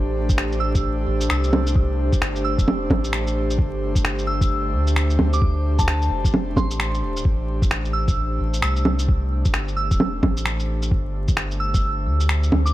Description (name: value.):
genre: future garage.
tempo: 131 BPM.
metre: 4/4.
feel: swing 62% on 16ths.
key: A minor.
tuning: A4 = 442 Hz.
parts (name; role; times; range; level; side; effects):
airy breathy pad; sustained chords; 0.0-12.7 s; A3 to C5; -28 LUFS; equal; chorus, sidechain pumping.
soft dub sub bass; bass; 0.0-12.7 s; D1 to D2; -22 LUFS; equal; none.
electronic kick drum; drums; 0.3-11.8 s; none; -20 LUFS; equal; none.
electronic shaker, finger snaps and bongos; drums; 0.3-12.7 s; none; -23 LUFS; right 1 dB; none.
soft synth bell; melody; 0.6-12.7 s; A5 to E6; -29 LUFS; right 1 dB; chorus, tape echo.
room: light reverb.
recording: vinyl crackle.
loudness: -18 LUFS.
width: side -15 dB against mid.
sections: 0.0-12.7 A section.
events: none.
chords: 0.0 Am7; 3.6 Gsus24; 5.4 Dm7; 7.3 Am7; 10.9 Gsus24.